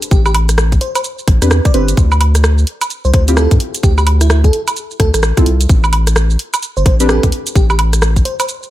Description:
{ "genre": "UK garage, two-step garage", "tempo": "129 BPM", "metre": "4/4", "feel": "swing 62% on 16ths", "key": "A minor", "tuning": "A4 = 440 Hz", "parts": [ { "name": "garage drum kit", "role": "drums", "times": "0.0-8.7 s", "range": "hi-hat, rim click, shaker, woodblock", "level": "-17 LUFS", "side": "right 2 dB", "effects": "none" }, { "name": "bell-like FM electric piano", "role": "melody", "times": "0.1-8.5 s", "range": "E4 to D5", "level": "-21 LUFS", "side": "equal", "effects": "chorus, ping-pong delay" }, { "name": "saturated sub bass", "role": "bass", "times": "0.1-8.2 s", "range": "G1 to G2", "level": "-12 LUFS", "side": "equal", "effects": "none" }, { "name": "electronic kick drum", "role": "drums", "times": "0.1-8.2 s", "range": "none", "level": "-12 LUFS", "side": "equal", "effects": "none" }, { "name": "deep mellow chord stab", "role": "stabs", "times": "1.4-7.2 s", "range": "C4 to B4", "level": "-17 LUFS", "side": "equal", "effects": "chorus, ping-pong delay" } ], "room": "little or no reverb", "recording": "none", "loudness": "-10 LUFS", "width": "side -14 dB against mid", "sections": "0.0-8.7 A section", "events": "none", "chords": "0.0 Am11; 2.0 Dm9; 5.7 A7sus4", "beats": "| 0.11 0.58 1.04 1.51 | 1.97 2.44 2.90 3.37 | 3.83 4.30 4.76 5.23 | 5.70 6.16 6.62 7.09 | 7.55 8.02 8.49" }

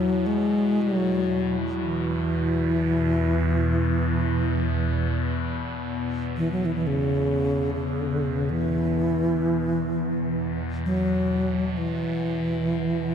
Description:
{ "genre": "world meditative, free-time meditation music", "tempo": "free time", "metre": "none", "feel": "none", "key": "unclear", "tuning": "A4 = 440 Hz", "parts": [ { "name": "bass flute", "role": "melody", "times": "0.0-13.1 s", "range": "C#3 to G#3", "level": "-24 LUFS", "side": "equal", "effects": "ping-pong delay" }, { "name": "evolving wavetable pad", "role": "drone", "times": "0.0-13.1 s", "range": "E2 to B2", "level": "-28 LUFS", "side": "right 1 dB", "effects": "phaser, built-in reverb" }, { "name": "glass harmonica", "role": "texture", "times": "0.0-10.0 s", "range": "B3 to F#4", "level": "-32 LUFS", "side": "left 4 dB", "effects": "none" } ], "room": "moderate huge ambient reverb, RT60 4.8 s", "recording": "dark, warm production", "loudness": "-22 LUFS", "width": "side -8 dB against mid", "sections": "0.0-13.1 A section", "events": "none", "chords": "none", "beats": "free time" }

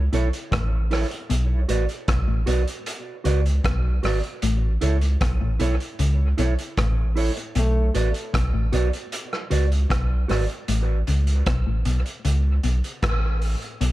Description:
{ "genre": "dub reggae", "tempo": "77 BPM", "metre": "4/4", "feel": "straight", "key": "unclear", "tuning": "A4 = 441 Hz", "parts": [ { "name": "warm sub bass", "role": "bass", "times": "0.0-13.9 s", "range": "G#1 to C#2", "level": "-21 LUFS", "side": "equal", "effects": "none" }, { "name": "mellow electric guitar", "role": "accompaniment", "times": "0.1-10.4 s", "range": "E4 to D5", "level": "-29 LUFS", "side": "right 5 dB", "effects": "dub echo" }, { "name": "mellow electric guitar", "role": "riff", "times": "0.1-13.9 s", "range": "G#2 to C#3", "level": "-28 LUFS", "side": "left 4 dB", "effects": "analog chorus" }, { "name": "vintage drum kit", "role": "drums", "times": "0.1-13.9 s", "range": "hi-hat, kick drum, rim click", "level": "-28 LUFS", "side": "equal", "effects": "none" }, { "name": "warm trombone", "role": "melody", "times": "7.6-7.9 s", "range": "A3", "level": "-31 LUFS", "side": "left 1 dB", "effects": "dub echo" } ], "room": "small room ambience", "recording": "none", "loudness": "-20 LUFS", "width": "side -16 dB against mid", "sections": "0.0-13.9 A section", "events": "break 0.0-7.6", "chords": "0.0 A; 1.3 Bm; 4.4 A; 7.6 Bm; 10.7 A", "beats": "0.52 | 1.30 2.08 2.87 3.65 | 4.43 5.21 5.99 6.77 | 7.56 8.34 9.12 9.90 | 10.68 11.46 12.25 13.03 | 13.81" }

